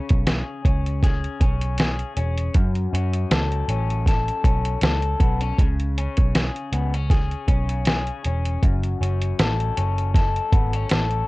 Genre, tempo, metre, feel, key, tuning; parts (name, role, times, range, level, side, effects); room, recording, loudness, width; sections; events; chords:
indie pop, bedroom pop; 79 BPM; 4/4; swing 55% on 16ths; F# minor; A4 = 440 Hz
electric guitar through a small old amp; accompaniment; 0.0-11.3 s; F#2 to A4; -28 LUFS; left 5 dB; wide subtle chorus, vibrato effect, cassette tape
vintage muted picked electric bass; bass; 0.1-11.2 s; E1 to F#2; -23 LUFS; equal
lo-fi sampler-style drum kit; drums; 0.1-11.3 s; hi-hat, kick drum, snare drum; -20 LUFS; equal; vintage 12-bit sampler grit, cassette tape
little or no reverb; home recording on cassette; -19 LUFS; side -20 dB against mid
0.0-11.3 A section
0.0 C#m7; 2.6 F#m; 5.6 C#7(no3); 8.6 F#m